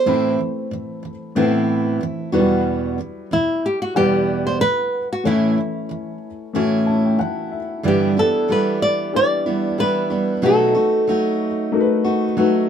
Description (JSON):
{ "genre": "acoustic pop", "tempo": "93 BPM", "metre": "4/4", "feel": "swing 55% on 16ths", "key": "unclear", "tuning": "A4 = 440 Hz", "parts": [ { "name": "flamenco guitar", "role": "melody", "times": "0.0-12.3 s", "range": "E4 to D5", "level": "-19 LUFS", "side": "equal", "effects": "none" }, { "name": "felt-muted upright piano", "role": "accompaniment", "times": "0.0-12.7 s", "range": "F#3 to B5", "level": "-23 LUFS", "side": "left 5 dB", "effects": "none" }, { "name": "picked steel-string acoustic guitar", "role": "accompaniment", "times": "0.0-12.7 s", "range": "E2 to F#4", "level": "-20 LUFS", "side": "right 3 dB", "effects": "none" } ], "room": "light reverb", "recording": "minimal, uncompressed stereo recording", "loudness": "-17 LUFS", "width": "side -8 dB against mid", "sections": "0.0-7.8 A section; 7.8-12.7 B section", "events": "felt piano fill 6.5-7.8", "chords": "0.1 Amadd9; 2.3 Emadd9; 5.3 A; 7.8 G6; 10.4 B7" }